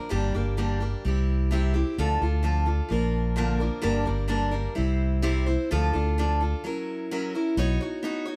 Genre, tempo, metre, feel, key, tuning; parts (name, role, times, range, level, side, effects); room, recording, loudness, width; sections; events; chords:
folk rock and heartland rock; 129 BPM; 4/4; straight; D minor; A4 = 439 Hz
picked steel-string acoustic guitar; accompaniment; 0.0-8.4 s; G2 to C#5; -30 LUFS; equal
fingered electric bass; bass; 0.1-7.8 s; G1 to D2; -28 LUFS; equal
light reverb; band playing live in one room; -26 LUFS; mono
0.0-7.6 A section
break 6.6-7.6
0.1 Gm; 1.0 C; 2.0 Dm; 2.9 Bb; 3.8 Gm; 4.8 C; 5.7 Dm; 6.6 F#7; 7.6 Badd9